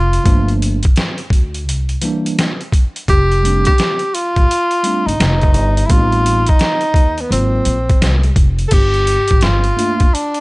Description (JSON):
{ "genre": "hip hop, jazz-hop", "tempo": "85 BPM", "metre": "4/4", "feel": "swing 62% on 16ths", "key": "G minor", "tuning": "A4 = 441 Hz", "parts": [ { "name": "mellow tenor saxophone", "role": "melody", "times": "0.0-10.4 s", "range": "B3 to A4", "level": "-16 LUFS", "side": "equal", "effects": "none" }, { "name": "upright bass", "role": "bass", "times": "0.0-9.7 s", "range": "F1 to Eb2", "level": "-16 LUFS", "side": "equal", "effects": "none" }, { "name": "trip hop sampler-style drum kit", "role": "drums", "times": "0.1-10.4 s", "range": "crash cymbal, hi-hat, kick drum, snare drum", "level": "-15 LUFS", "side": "equal", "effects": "none" }, { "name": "tine electric piano", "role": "accompaniment", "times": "0.2-10.1 s", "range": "E3 to F4", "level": "-20 LUFS", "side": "right 1 dB", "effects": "fast stereo tremolo" } ], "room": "little or no reverb", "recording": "nothing above 10.8 kHz", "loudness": "-12 LUFS", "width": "side -23 dB against mid", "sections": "0.0-8.7 A section; 8.7-10.4 B section", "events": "none", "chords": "0.3 Gm7; 1.7 C7; 3.1 F6; 5.9 Am7b5; 7.3 Ab13; 8.7 Gm7" }